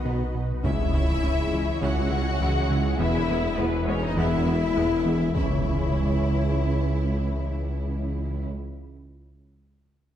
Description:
cinematic, hybrid orchestral and electronic film score; 102 BPM; 4/4; straight; C# minor; A4 = 440 Hz
clear symphonic violin section; second line; 0.0-8.5 s; B3 to D#5; -33 LUFS; left 4 dB
rich symphonic viola section; accompaniment; 0.0-8.5 s; E3 to E4; -35 LUFS; equal; low-pass filter
analog string pad; sustained chords; 0.0-8.5 s; G#3 to C#5; -34 LUFS; left 2 dB; ensemble chorus, low-pass filter
mellow French horn section; sustained chords; 0.0-8.5 s; F#3 to F#4; -31 LUFS; left 5 dB; low-pass filter
punchy sub bass; bass; 0.0-8.5 s; E1 to C#2; -31 LUFS; equal
soft round pluck; arpeggios; 0.1-5.2 s; C#3 to E4; -33 LUFS; left 3 dB
rubbery square bass; riff; 0.1-5.2 s; C#2 to E3; -30 LUFS; right 1 dB; low-pass filter
rich symphonic double bass section; bass; 0.1-8.5 s; E1 to C#2; -29 LUFS; right 1 dB
bright symphonic violin section; melody; 0.6-8.5 s; B4 to F#5; -35 LUFS; left 4 dB; low-pass filter
rich symphonic cello section; bass; 0.6-8.5 s; C#2 to E2; -31 LUFS; right 2 dB
impact; sound effects; 0.6-9.2 s; -33 LUFS; left 1 dB
wet recital hall reverb, RT60 1.6 s; heard from further back in the room; -22 LUFS; side -10 dB against mid
0.6-5.3 A section; 5.3-7.7 B section
impact 0.6-3.0, 5.3-7.7; filter sweep 0.6-5.3
0.0 B; 0.6 C#m; 3.0 E; 5.3 C#m

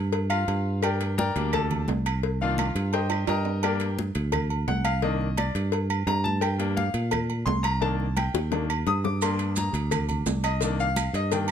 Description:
latin, salsa; 172 BPM; 4/4; straight; G minor; A4 = 440 Hz
fingered electric bass; bass; 0.0-11.5 s; C2 to Bb2; -27 LUFS; right 1 dB
agogo bells and timbales; percussion; 0.1-11.5 s; -32 LUFS; right 7 dB
congas; percussion; 0.1-11.5 s; -34 LUFS; left 1 dB
cowbell and bongos; percussion; 0.1-11.5 s; -32 LUFS; left 10 dB
bright concert grand piano; accompaniment; 0.3-11.5 s; Eb3 to Eb6; -29 LUFS; left 3 dB
claves; percussion; 0.3-11.5 s; -38 LUFS; right 8 dB
maracas; percussion; 9.2-11.5 s; -36 LUFS; right 7 dB
light reverb; close, detailed microphones; -23 LUFS; side -8 dB against mid
0.0-11.5 A section
grand piano solo 0.0-11.5; drum fill 3.1-3.6, 8.3-9.2
0.0 N.C.; 0.8 Gm; 2.2 Cm7; 3.6 Gm; 5.0 Cm7; 6.4 Gm; 7.8 Cm7; 9.2 Gm; 10.6 Cm7

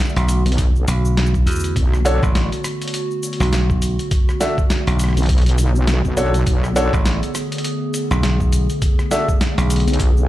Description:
glitch hop; 102 BPM; 4/4; swing 59% on 16ths; B dorian; A4 = 440 Hz
warbly tape-like pad; sustained chords; 0.0-10.3 s; D3 to G#4; -25 LUFS; equal; chorus, built-in reverb, vintage 12-bit sampler grit, sidechain pumping
boom bap sampler-style drum kit; drums; 0.0-10.3 s; hi-hat, rim click, shaker, snare drum; -25 LUFS; left 1 dB; studio reverb
dry thumbed slap bass; bass; 0.2-9.8 s; A1 to E2; -17 LUFS; equal; tube saturation
wobble bass; bass; 0.5-10.3 s; B1; -17 LUFS; equal; chorus, tube saturation
electronic kick drum; drums; 0.6-10.1 s; -18 LUFS; equal; studio reverb
warm grand piano; stabs; 2.0-9.3 s; D4 to E5; -23 LUFS; equal; sidechain pumping, tape echo
little or no reverb; played on a big sound system in a bare room, large studio reverb; -15 LUFS; side -15 dB against mid
0.0-10.3 A section
0.0 Bm7

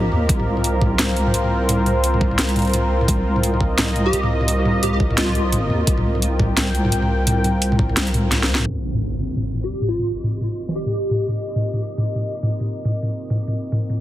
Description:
half-time drum and bass; 172 BPM; 4/4; swing 59% on 16ths, half-time; C minor; A4 = 440 Hz
plucky unison lead; melody; 0.0-0.1, 4.1-5.5, 9.6-11.2 s; F4 to G4; -27 LUFS; equal; ensemble chorus, dub echo
dark analog pad; sustained chords; 0.0-14.0 s; C4 to G5; -25 LUFS; equal; chorus, vintage 12-bit sampler grit, sidechain pumping
deep soft wobble bass; bass; 0.0-8.7 s; C2 to Eb2; -20 LUFS; equal; chorus
drum and bass drum kit; drums; 0.1-14.0 s; hi-hat, snare drum, toms; -22 LUFS; equal; overdrive
electronic kick drum; drums; 0.3-7.9 s; -20 LUFS; equal; overdrive
impact; sound effects; 8.7-10.1 s; -28 LUFS; equal
light reverb; heavily compressed radio sound, low-pass filter; -17 LUFS; side -14 dB against mid
0.0-8.7 A section; 8.7-14.0 B section
drop 0.0-8.7; drum fill 8.3-8.7; band accent 8.5; impact 8.7-10.1; filter sweep 8.7-14.0
0.0 Cm

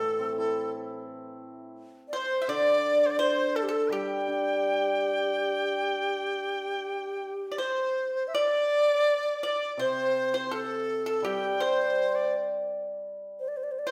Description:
chinese traditional, Chinese chamber ensemble; 83 BPM; 4/4; rubato; G zhi mode; A4 = 440 Hz
breathy mellow xiao; melody; 0.0-13.9 s; G4 to E5; -31 LUFS; equal
bright reedy dizi; second line; 0.0-13.9 s; A4 to G5; -34 LUFS; equal
pipa; second line; 0.0-13.9 s; G4 to E5; -36 LUFS; equal
hammered dulcimer; accompaniment; 0.0-13.4 s; A2 to E4; -33 LUFS; equal
wet recital hall reverb, RT60 1.4 s; -28 LUFS; mono
0.0-8.3 A section; 8.3-13.9 B section

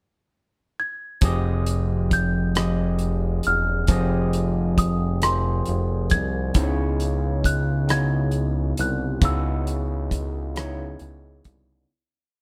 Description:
slow six-eight R&B; 45 BPM (dotted quarters); 6/8; straight; F minor; A4 = 440 Hz
small celesta; melody; 0.8-11.0 s; C6 to Ab6; -30 LUFS; equal
overdriven tine electric piano; accompaniment; 1.2-11.9 s; Db3 to Eb5; -30 LUFS; equal; phaser
fat analog bass; bass; 1.2-11.9 s; E1 to Db2; -26 LUFS; equal
damped 70s drum kit; drums; 1.2-11.7 s; hi-hat, kick drum, rim click; -24 LUFS; equal
light reverb; band playing live in one room; -23 LUFS; mono
0.0-1.2 pickup bar; 1.2-11.9 verse
fade-out 9.2-11.9
0.0 N.C.; 1.2 Fm9; 6.6 Dbm9

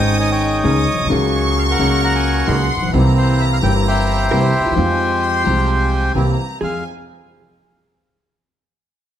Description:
tango; 131 BPM; 4/4; rubato; F minor; A4 = 438 Hz
bandoneon; melody; 0.0-6.8 s; E4 to Bb5; -20 LUFS; left 1 dB
warm studio violin section; second line; 0.0-6.8 s; G5 to Eb6; -24 LUFS; equal
warm concert grand piano; accompaniment; 0.0-6.8 s; G1 to Ab4; -20 LUFS; left 4 dB
bandoneon; stabs; 0.0-6.8 s; Ab3 to Ab4; -28 LUFS; right 5 dB
upright bass; bass; 0.0-6.8 s; G1 to F2; -18 LUFS; right 2 dB
hollow-body jazz guitar; second line; 4.3-6.8 s; F4 to C5; -27 LUFS; right 4 dB
light reverb; close, detailed microphones; -14 LUFS; side -10 dB against mid
0.0-6.6 A section; 6.6-8.4 B section
0.0 Dbsus2; 1.1 Gbadd9/Db; 2.9 C7; 4.8 Fm; 6.1 C7; 6.6 Fm

